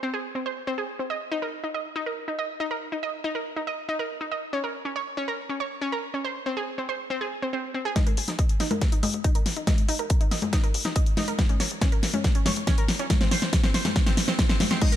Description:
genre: uplifting trance.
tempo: 140 BPM.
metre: 4/4.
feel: straight.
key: unclear.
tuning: A4 = 440 Hz.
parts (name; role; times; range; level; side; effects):
analog pluck; arpeggios; 0.0-15.0 s; C4 to Eb5; -29 LUFS; right 1 dB; chorus, cassette tape, sidechain pumping, ping-pong delay.
big-room dance drum kit; drums; 8.0-15.0 s; congas, crash cymbal, hi-hat, snare drum; -26 LUFS; left 1 dB; none.
electronic kick drum; drums; 8.0-14.9 s; none; -23 LUFS; equal; none.
tight sequencer bass; bass; 8.2-14.8 s; Eb1 to Bb2; -44 LUFS; equal; none.
room: light reverb.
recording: none.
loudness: -24 LUFS.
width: side -11 dB against mid.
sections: 0.0-8.0 A section; 8.0-14.8 B section.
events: build-up 8.0-14.8; drum fill 8.0-14.8; filter sweep on synth pluck 8.0-14.8.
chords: 0.0 Ab; 1.1 Eb5; 4.5 Bbm; 6.2 Ab; 8.0 Eb5; 11.4 Bbm; 13.1 Ab.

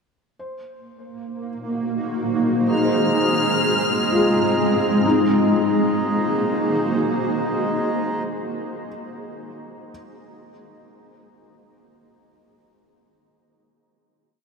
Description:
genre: ambient.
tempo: free time.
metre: none.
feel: none.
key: Ab mixolydian.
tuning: A4 = 440 Hz.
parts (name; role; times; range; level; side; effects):
granular cloud pad; sustained chords; 1.2-8.2 s; Ab3 to C5; -21 LUFS; right 1 dB; built-in reverb.
felt-muted upright piano; arpeggios; 0.4-9.9 s; Eb4 to C5; -25 LUFS; left 3 dB; diffuse ambient delay.
hand-pumped harmonium; drone; 2.7-8.2 s; Ab3 to Eb4; -26 LUFS; equal; none.
rich chamber violin section; texture; 2.7-5.1 s; F6; -26 LUFS; left 3 dB; none.
room: wet huge ambient reverb, RT60 7.5 s.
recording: none.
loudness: -18 LUFS.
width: side -5 dB against mid.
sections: 0.3-5.0 A section; 5.0-7.4 final chord.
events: fade-in on felt piano 0.3-5.0.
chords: 0.3 Ab7; 2.7 Fm/Ab; 5.0 Ab7.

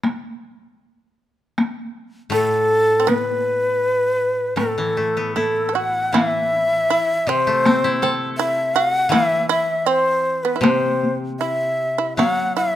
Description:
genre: japanese traditional, Japanese chamber music.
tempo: 79 BPM.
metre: 2/4.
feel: rubato.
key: A kumoi.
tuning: A4 = 440 Hz.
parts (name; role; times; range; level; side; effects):
taiko ensemble; percussion; 0.0-12.4 s; none; -21 LUFS; left 1 dB; none.
breathy shakuhachi; melody; 2.3-12.8 s; A4 to F#5; -18 LUFS; left 1 dB; none.
shamisen; second line; 2.3-12.8 s; A3 to A4; -25 LUFS; right 8 dB; none.
koto; accompaniment; 2.3-12.8 s; A2 to A4; -26 LUFS; left 3 dB; none.
room: light reverb.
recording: close, detailed microphones.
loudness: -17 LUFS.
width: side -12 dB against mid.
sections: 0.0-6.1 A section; 6.1-12.8 B section.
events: none.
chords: none.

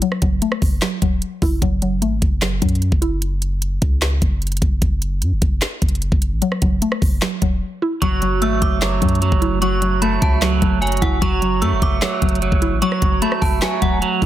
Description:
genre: hip hop, trap.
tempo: 150 BPM.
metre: 4/4.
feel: half-time.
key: F# minor.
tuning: A4 = 440 Hz.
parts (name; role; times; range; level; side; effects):
mallet-like synth pluck; accompaniment; 0.0-3.2, 6.4-14.3 s; F#3 to E4; -23 LUFS; left 2 dB; chorus, low-pass filter.
trap drum kit; drums; 0.0-14.3 s; handclaps, hi-hat, kick drum, rim click, snare drum; -19 LUFS; equal; none.
warm 808-style bass; bass; 0.2-14.3 s; E1 to F#2; -21 LUFS; equal; none.
metallic FM bell; second line; 8.0-14.0 s; F#5 to E6; -25 LUFS; left 1 dB; chorus, tape echo.
electric guitar at the edge of break-up; arpeggios; 8.0-14.3 s; F#3 to A3; -21 LUFS; right 6 dB; phaser, low-pass filter, tape echo.
room: little or no reverb.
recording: dense, heavily limited modern master.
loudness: -16 LUFS.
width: side -13 dB against mid.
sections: 0.0-14.3 A section.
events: filter sweep 0.0-8.0; break 7.6-8.0.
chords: 0.0 F#m7.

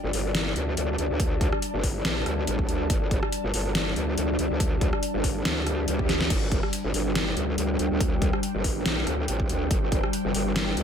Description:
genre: heavy wobble dubstep.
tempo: 141 BPM.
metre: 4/4.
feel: swing 54% on 16ths, half-time.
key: unclear.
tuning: A4 = 441 Hz.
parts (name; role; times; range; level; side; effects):
evolving wavetable pad; sustained chords; 0.0-10.8 s; G3 to A5; -30 LUFS; left 1 dB; ensemble chorus, built-in reverb, sidechain pumping.
growl bass; bass; 0.0-10.8 s; G1 to D2; -28 LUFS; equal; chorus, overdrive.
dubstep drum kit; drums; 0.1-10.8 s; crash cymbal, hi-hat, rim click, snare drum; -29 LUFS; left 1 dB; overdrive.
electronic kick drum; drums; 1.2-10.0 s; none; -26 LUFS; equal; overdrive.
swell; sound effects; 5.7-6.3 s; none; -34 LUFS; right 2 dB; none.
room: little or no reverb.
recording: none.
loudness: -23 LUFS.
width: side -8 dB against mid.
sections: 0.0-10.8 A section.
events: swell 5.7-6.3; drum fill 6.1.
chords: 0.0 G5.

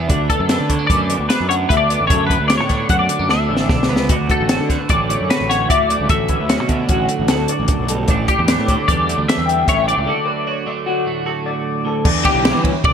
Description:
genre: math rock and midwest emo.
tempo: 150 BPM.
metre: 5/4.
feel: straight.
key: D major.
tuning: A4 = 441 Hz.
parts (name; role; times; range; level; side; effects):
twelve-string electric guitar; accompaniment; 0.0-12.9 s; D2 to F#4; -23 LUFS; right 6 dB; lush chorus.
electric guitar through a small old amp; arpeggios; 0.0-12.9 s; F#4 to G5; -23 LUFS; left 5 dB; lush chorus, ping-pong delay.
fuzz picked electric bass; bass; 0.0-12.9 s; A1 to E3; -22 LUFS; equal; overdrive.
compact cocktail drum kit; drums; 0.1-12.9 s; crash cymbal, hi-hat, kick drum, ride cymbal, snare drum; -18 LUFS; equal; none.
clean electric guitar; melody; 0.3-12.9 s; G4 to F#5; -20 LUFS; left 2 dB; analog chorus.
raw garage guitar; riff; 12.2-12.7 s; E3 to E4; -23 LUFS; equal; overdrive.
room: light reverb, small room ambience.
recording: bright 1980s-style digital production.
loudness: -14 LUFS.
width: side -7 dB against mid.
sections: 0.0-12.1 A section.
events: drum fill 3.3-4.1; break 10.1-12.1.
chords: 0.1 Bm7; 4.1 Dmaj7; 8.1 A7sus4; 10.1 D; 12.1 Em7.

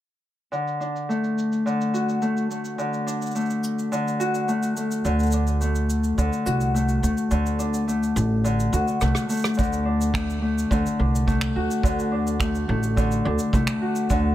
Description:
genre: folktronica.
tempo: 106 BPM.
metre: 4/4.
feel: straight.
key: D mixolydian.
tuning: A4 = 441 Hz.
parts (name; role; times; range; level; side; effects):
Celtic harp; arpeggios; 0.5-14.3 s; D3 to F#4; -23 LUFS; left 1 dB; low-pass filter.
cabasa, rim click and finger snaps; drums; 0.5-14.2 s; none; -34 LUFS; right 2 dB; low-pass filter on snare, low-pass filter on perc, low-pass filter on room.
upright bass; bass; 5.0-14.3 s; A1 to D2; -24 LUFS; right 1 dB; none.
kick drum; drums; 9.6-14.2 s; none; -25 LUFS; right 1 dB; none.
room: light reverb.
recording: none.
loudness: -21 LUFS.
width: side -13 dB against mid.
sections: 0.5-9.6 A section; 9.6-14.3 B section.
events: drum fill 9.0-9.6.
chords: 0.5 D.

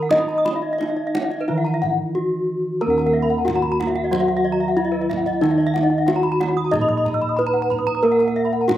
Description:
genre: Balinese gamelan.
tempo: 92 BPM.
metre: 4/4.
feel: straight.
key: Eb pelog.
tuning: A4 = 439 Hz.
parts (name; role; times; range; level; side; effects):
gamelan-type bronze metallophone; melody; 0.0-8.8 s; Eb4 to Eb5; -22 LUFS; left 1 dB; none.
gamelan-type bronze metallophone; accompaniment; 0.0-8.8 s; Eb3 to Eb4; -26 LUFS; right 5 dB; none.
gamelan-type bronze metallophone; arpeggios; 0.0-8.5 s; Cb5 to Fb6+35c; -29 LUFS; right 7 dB; slapback echo.
gamelan-type bossed gongs; bass; 0.0-8.8 s; Eb2 to Eb5; -24 LUFS; equal; none.
gamelan-type bronze metallophone; arpeggios; 0.1-8.8 s; Cb5 to Eb6; -26 LUFS; left 7 dB; slapback echo.
kendang; percussion; 0.1-8.8 s; none; -29 LUFS; right 3 dB; slapback echo.
room: little or no reverb.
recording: recorded outdoors, with no room sound.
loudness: -18 LUFS.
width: side -12 dB against mid.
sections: 0.0-2.8 A section; 2.8-8.8 B section.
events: none.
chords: none.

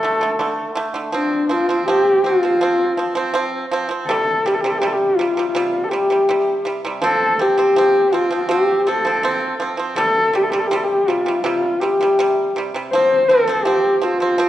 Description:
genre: mongolian traditional, Mongolian folk.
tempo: 82 BPM.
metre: 4/4.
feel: straight.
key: F gong mode.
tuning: A4 = 441 Hz.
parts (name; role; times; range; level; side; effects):
dark horsehead fiddle; melody; 0.0-14.5 s; D4 to C5; -16 LUFS; left 1 dB; none.
pipa; arpeggios; 0.0-14.5 s; C3 to C4; -22 LUFS; right 3 dB; none.
room: wet recital hall reverb, RT60 1.5 s.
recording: worn, warbling old tape, cassette tape, warbly pitch drift.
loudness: -15 LUFS.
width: side -13 dB against mid.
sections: 0.0-4.1 A section; 4.1-14.5 B section.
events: none.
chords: 0.0 D5; 1.1 F5; 4.1 C5; 7.0 F5; 10.0 C5; 12.9 F5.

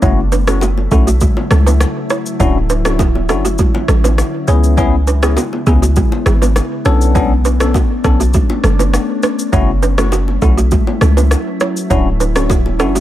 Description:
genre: afrobeats.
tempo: 101 BPM.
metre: 4/4.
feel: straight.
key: F# minor.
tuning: A4 = 441 Hz.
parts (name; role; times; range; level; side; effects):
bell-like tine electric piano; accompaniment; 0.0-13.0 s; A3 to A4; -19 LUFS; left 6 dB; phaser.
glassy FM pad; sustained chords; 0.0-13.0 s; C#3 to E4; -21 LUFS; left 2 dB; ensemble chorus, built-in reverb.
balafon; riff; 0.0-13.0 s; A3 to C#5; -20 LUFS; right 6 dB; tape echo.
warm 808-style bass; bass; 0.0-13.0 s; D1 to C#2; -13 LUFS; equal; none.
afro-pop drum kit; drums; 0.0-13.0 s; kick drum, rim click, shaker; -17 LUFS; equal; none.
congas and bongos; percussion; 0.0-12.8 s; none; -23 LUFS; left 3 dB; none.
room: digital ambience.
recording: none.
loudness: -11 LUFS.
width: side -13 dB against mid.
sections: 0.0-13.0 A section.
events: none.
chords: 0.0 F#m7; 2.4 Dmaj9; 4.5 C#m7; 6.9 Bm9; 9.5 F#m7; 11.9 Dmaj9.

